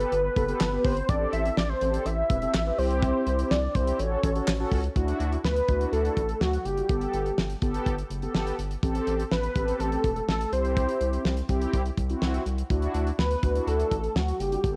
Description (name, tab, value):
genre	synth-pop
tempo	124 BPM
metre	4/4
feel	straight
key	D mixolydian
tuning	A4 = 441 Hz
part	unison lead	melody	0.0-14.8 s	F#4 to E5	-30 LUFS	equal	cassette tape
part	mellow synth brass	accompaniment	0.0-14.8 s	B3 to B4	-34 LUFS	equal	chorus
part	round analog bass	bass	0.0-14.8 s	E1 to D2	-32 LUFS	equal	none
part	damped 70s drum kit	drums	0.0-14.8 s	handclaps, hi-hat, kick drum, snare drum	-31 LUFS	equal	cassette tape
room	light reverb, small room ambience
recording	home recording on cassette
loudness	-26 LUFS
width	mono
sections	0.0-5.0 A section; 5.0-14.8 B section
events	none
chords	0.0 Gadd9; 1.1 Am7; 2.8 C; 4.0 A6; 5.0 Dadd9; 6.9 Gadd9; 8.8 Am7; 10.5 C; 12.7 Dadd9